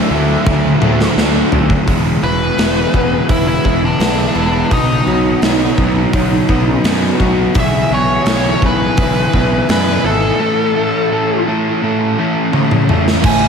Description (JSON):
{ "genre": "quiet-loud alternative rock", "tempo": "84 BPM", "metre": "4/4", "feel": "straight", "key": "E major", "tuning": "A4 = 440 Hz", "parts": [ { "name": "nasal lead guitar with a parked wah", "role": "melody", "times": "0.0-13.5 s", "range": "D4 to G#5", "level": "-18 LUFS", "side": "equal", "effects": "overdrive, slapback echo" }, { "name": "fuzz guitar", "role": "riff", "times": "0.0-1.5, 13.2-13.5 s", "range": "A2 to D4", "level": "-19 LUFS", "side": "right 1 dB", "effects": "distortion" }, { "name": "overdriven semi-hollow guitar", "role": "riff", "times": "0.0-13.5 s", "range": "A2 to A4", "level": "-16 LUFS", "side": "equal", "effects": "slapback echo" }, { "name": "fuzz picked electric bass", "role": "bass", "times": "0.1-13.5 s", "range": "E1 to F#2", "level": "-19 LUFS", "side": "equal", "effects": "overdrive" }, { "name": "big rock drum kit", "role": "drums", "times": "0.5-13.4 s", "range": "crash cymbal, hi-hat, kick drum, snare drum, toms", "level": "-16 LUFS", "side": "equal", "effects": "none" }, { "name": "picked swing-style acoustic guitar", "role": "arpeggios", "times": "1.9-7.6 s", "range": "E2 to F#4", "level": "-24 LUFS", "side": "left 6 dB", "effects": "slapback echo" } ], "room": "moderate concert hall reverb, RT60 2.4 s", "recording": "big arena sound", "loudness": "-11 LUFS", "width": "side -6 dB against mid", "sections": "0.0-1.9 A section; 1.9-13.2 B section", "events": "drum fill 0.5-1.9, 12.5-13.2; lead electric guitar solo 1.9-13.2", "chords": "0.0 Dadd9; 1.9 E; 4.7 B; 7.6 E/B; 10.4 A", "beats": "0.46 1.17 | 1.88 2.58 3.29 4.00 | 4.72 5.43 6.14 6.85 | 7.56 8.27 8.98 9.69 | 10.40 11.11 11.82 12.53 | 13.24" }